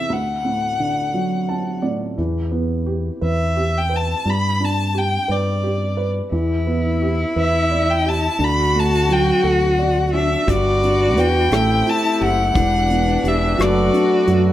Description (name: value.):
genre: acoustic folk-pop ballad.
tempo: 58 BPM (dotted quarters).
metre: 6/8.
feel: straight.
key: unclear.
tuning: A4 = 440 Hz.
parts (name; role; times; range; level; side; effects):
clear violin; melody; 0.0-14.4 s; D5 to B5; -21 LUFS; left 1 dB; none.
felt-muted upright piano; accompaniment; 0.0-14.5 s; D2 to A5; -23 LUFS; right 2 dB; none.
fingered electric bass; bass; 2.2-14.5 s; E1 to G2; -21 LUFS; equal; none.
warm cello; second line; 6.3-14.5 s; D4 to F#4; -20 LUFS; left 1 dB; none.
hand-pumped harmonium; sustained chords; 10.5-14.5 s; E3 to B4; -26 LUFS; left 3 dB; none.
soft brush drum kit; drums; 10.5-14.4 s; hi-hat, kick drum, rim click; -24 LUFS; equal; none.
room: moderate large studio reverb, RT60 1.2 s.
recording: none.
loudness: -16 LUFS.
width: side -13 dB against mid.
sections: 0.0-2.2 A section; 2.2-10.5 B section; 10.5-14.5 C section.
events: none.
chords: 0.1 D; 2.2 Em; 4.3 G; 6.3 Em7; 8.4 D; 10.5 Gmaj7; 11.5 Am7; 12.6 Em7; 13.6 Bm7/F#.